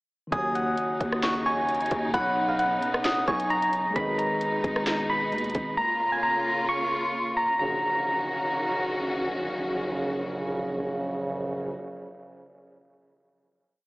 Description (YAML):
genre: hip hop, trap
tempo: 132 BPM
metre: 4/4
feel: half-time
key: Eb minor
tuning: A4 = 439 Hz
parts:
  - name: soft electric-piano-like synth keys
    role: melody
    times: 0.3-8.9 s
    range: F5 to Db6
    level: -26 LUFS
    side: equal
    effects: chorus, low-pass filter
  - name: soft synth bell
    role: second line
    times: 0.3-3.5 s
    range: B5 to Eb6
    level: -30 LUFS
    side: equal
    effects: chorus, tape echo
  - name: mellow tine electric piano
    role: accompaniment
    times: 0.3-5.8 s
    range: B2 to Eb5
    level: -33 LUFS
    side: left 1 dB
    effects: medium stereo tremolo, low-pass filter
  - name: warm symphonic string section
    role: sustained chords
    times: 0.4-11.7 s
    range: Cb3 to Gb4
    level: -32 LUFS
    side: left 1 dB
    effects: none
  - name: warm brass ensemble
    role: stabs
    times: 0.3-0.7, 4.0-4.3, 7.6-11.7 s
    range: Bb1 to Gb3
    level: -33 LUFS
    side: right 1 dB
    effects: tape echo
  - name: growling 808-style bass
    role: bass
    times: 0.3-5.8 s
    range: Ab1 to Eb2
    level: -33 LUFS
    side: equal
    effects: none
  - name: trap drum kit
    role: drums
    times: 0.3-5.7 s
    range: hi-hat, kick drum, rim click, snare drum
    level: -31 LUFS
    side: equal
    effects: none
room: wet plate reverb, RT60 2.5 s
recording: dreamy mix soaked in reverb, AM radio sound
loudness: -24 LUFS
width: side -22 dB against mid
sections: 0.3-7.6 hook; 7.6-11.2 final chord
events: none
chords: 0.3 Ebm7; 2.1 Badd9; 4.0 Abm; 5.8 Bbm; 7.6 Ebm7